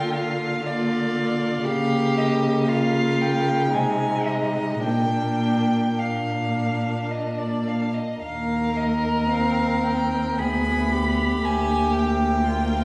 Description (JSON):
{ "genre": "classical, slow romantic movement for string quartet", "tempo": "52-60 BPM", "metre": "3/4", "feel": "rubato", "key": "Eb major", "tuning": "A4 = 441 Hz", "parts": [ { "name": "rich violin", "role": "melody", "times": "0.0-12.8 s", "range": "D5 to Cb6", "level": "-30 LUFS", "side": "equal", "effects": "none" }, { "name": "rich violin", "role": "second line", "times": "0.0-12.8 s", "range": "D4 to Bb4", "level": "-30 LUFS", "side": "equal", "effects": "none" }, { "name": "warm viola", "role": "accompaniment", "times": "0.0-12.8 s", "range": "Ab3 to C4", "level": "-29 LUFS", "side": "equal", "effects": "none" }, { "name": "rich cello", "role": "bass", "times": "0.0-12.8 s", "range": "D2 to D3", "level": "-28 LUFS", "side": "equal", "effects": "none" } ], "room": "wet recital hall reverb, RT60 1.6 s", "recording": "heard from further back in the room", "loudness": "-23 LUFS", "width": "mono", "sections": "0.0-12.8 A section", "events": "none", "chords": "0.0 Bb/D; 1.7 Eb9/Db; 3.7 Ab/C; 4.8 Bb; 8.2 Eb5; 10.4 Abdim/D; 11.4 Bb7/D" }